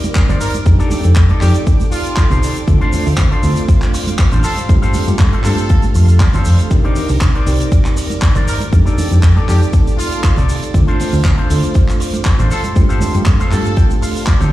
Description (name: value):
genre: nu-disco, nu disco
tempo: 119 BPM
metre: 4/4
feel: straight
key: C dorian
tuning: A4 = 440 Hz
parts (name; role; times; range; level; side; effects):
- tine electric piano; accompaniment; 0.0-14.5 s; A3 to D5; -23 LUFS; right 2 dB; medium stereo tremolo, sidechain pumping, analog delay
- string machine, full ensemble; sustained chords; 0.0-14.5 s; A4 to D6; -29 LUFS; equal; ensemble chorus, sidechain pumping
- electric guitar with an envelope filter; riff; 0.0-14.5 s; D4 to A5; -25 LUFS; left 2 dB; wide subtle chorus, analog delay
- damped 70s drum kit; drums; 0.0-14.5 s; handclaps, hi-hat, shaker; -24 LUFS; right 1 dB; none
- congas; percussion; 0.0-14.5 s; none; -23 LUFS; right 2 dB; none
- electronic kick drum; drums; 0.2-14.4 s; none; -12 LUFS; equal; none
- hollow-body short-scale fingered electric bass; bass; 0.3-14.5 s; G1 to G2; -13 LUFS; equal; none
- brilliant trumpet section; melody; 0.4-13.9 s; F4 to Bb4; -26 LUFS; right 1 dB; tape echo
room: small room ambience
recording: played on a big sound system in a bare room, large studio reverb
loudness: -11 LUFS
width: side -15 dB against mid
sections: 0.0-14.5 A section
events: clean electric guitar fill 13.3-14.5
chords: 0.0 Cm9; 0.7 F13; 2.7 Dm7; 4.4 G9sus4; 6.7 Cm9; 8.7 F13; 10.7 Dm7; 12.5 G9sus4